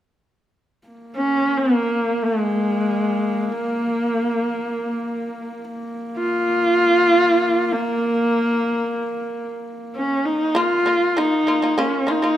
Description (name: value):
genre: mongolian traditional, Mongolian folk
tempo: free time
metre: none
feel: none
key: Bb yu mode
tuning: A4 = 440 Hz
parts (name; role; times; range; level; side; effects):
- dark horsehead fiddle; drone; 0.9-10.6 s; Bb3; -28 LUFS; left 1 dB; none
- rich horsehead fiddle; melody; 1.2-12.4 s; Ab3 to F4; -18 LUFS; equal; none
- shamisen; arpeggios; 10.5-12.4 s; Bb3 to F4; -22 LUFS; equal; none
room: moderate recital hall reverb, RT60 1.7 s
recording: none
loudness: -18 LUFS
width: side -12 dB against mid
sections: 0.9-10.6 A section; 10.6-12.4 B section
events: none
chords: 0.9 N.C.; 10.6 Bb5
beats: free time